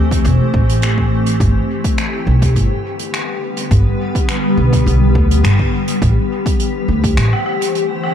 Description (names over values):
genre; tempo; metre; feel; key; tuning
ambient dub; 104 BPM; 4/4; straight; A minor; A4 = 442 Hz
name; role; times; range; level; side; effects
granular cloud pad; sustained chords; 0.0-8.1 s; D3 to C5; -18 LUFS; left 2 dB; built-in reverb
upright bass; bass; 0.0-7.3 s; E1 to D2; -14 LUFS; equal; none
electronic kick drum; drums; 0.1-7.1 s; none; -18 LUFS; equal; overdrive
soft-mallet drum kit; drums; 0.1-8.1 s; finger snaps, hi-hat, woodblock; -24 LUFS; right 1 dB; dub echo
room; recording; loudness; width
small room ambience; none; -13 LUFS; side -9 dB against mid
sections
0.0-6.0 A section; 6.0-8.1 B section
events
band accent 5.4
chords
0.0 Am7; 1.4 G; 6.0 Am7